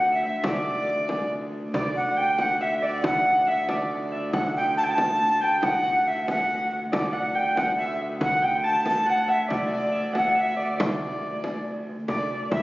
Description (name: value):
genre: medieval dance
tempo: 93 BPM (dotted quarters)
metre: 6/8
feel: straight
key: D major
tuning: A4 = 440 Hz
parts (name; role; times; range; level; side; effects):
- mellow tenor recorder; melody; 0.0-12.6 s; D5 to A5; -24 LUFS; equal; slapback echo
- Celtic harp; second line; 0.0-12.6 s; D5 to A5; -30 LUFS; right 2 dB; none
- rich viola da gamba; drone; 0.0-12.6 s; D2; -32 LUFS; equal; none
- frame drum; percussion; 0.4-12.6 s; none; -30 LUFS; equal; none
room: wet concert hall reverb, RT60 2.2 s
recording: recorded on a phone in the room, studio reverb, nothing above 7.5 kHz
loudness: -22 LUFS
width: side -18 dB against mid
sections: 0.0-1.7 A section; 1.7-12.1 A section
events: none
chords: none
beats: | 0.44 1.09 | 1.74 2.38 | 3.03 3.68 | 4.33 4.97 | 5.62 6.27 | 6.92 7.56 | 8.21 8.85 | 9.50 10.15 | 10.79 11.44 | 12.08